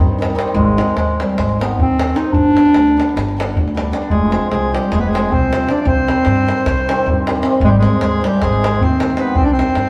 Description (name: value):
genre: balkan folk, Balkan wedding band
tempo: 307 BPM (eighths)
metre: 9/8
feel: straight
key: C harmonic minor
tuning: A4 = 440 Hz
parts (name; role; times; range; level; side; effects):
- hammered dulcimer; accompaniment; 0.0-9.9 s; C3 to Eb4; -23 LUFS; equal; none
- upright bass; bass; 0.0-9.9 s; F1 to G2; -22 LUFS; equal; none
- davul; percussion; 0.0-9.9 s; none; -23 LUFS; equal; none
- dark clarinet; melody; 0.5-9.9 s; G3 to Eb4; -18 LUFS; equal; none
- accordion; second line; 4.1-9.9 s; G4 to D5; -24 LUFS; equal; none
room: wet large studio reverb, RT60 1.4 s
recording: band playing live in one room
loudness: -15 LUFS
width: mono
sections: 0.0-9.9 A section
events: none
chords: 0.0 Cm; 0.6 Ab; 2.3 G; 4.1 Fm; 5.9 Cm; 7.6 Ab; 9.4 Cm